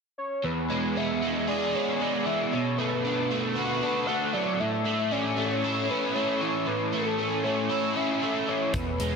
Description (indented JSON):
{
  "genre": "rock, shoegaze and dream pop",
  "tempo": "116 BPM",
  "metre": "4/4",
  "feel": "straight",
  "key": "A major",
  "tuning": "A4 = 439 Hz",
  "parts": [
    { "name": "warm velvety synth lead", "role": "melody", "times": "0.2-9.2 s", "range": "A4 to F#5", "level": "-30 LUFS", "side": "equal", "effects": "chorus, analog delay" },
    { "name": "crunchy overdriven guitar", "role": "riff", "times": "0.4-9.2 s", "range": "E2 to G#4", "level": "-26 LUFS", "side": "equal", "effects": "analog chorus" },
    { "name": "hollow-body short-scale picked electric bass", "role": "bass", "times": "8.7-9.2 s", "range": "E1", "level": "-30 LUFS", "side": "equal", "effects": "none" },
    { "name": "huge arena drum kit", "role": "drums", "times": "8.7-9.1 s", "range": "hi-hat, kick drum", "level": "-34 LUFS", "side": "equal", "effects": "none" }
  ],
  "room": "wet lush hall reverb, RT60 1.9 s, small room reverb",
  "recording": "dreamy mix soaked in reverb",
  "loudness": "-25 LUFS",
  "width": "side -5 dB against mid",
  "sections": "0.4-9.2 A section",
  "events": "none",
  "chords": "0.4 E; 2.5 Bm7; 4.6 A"
}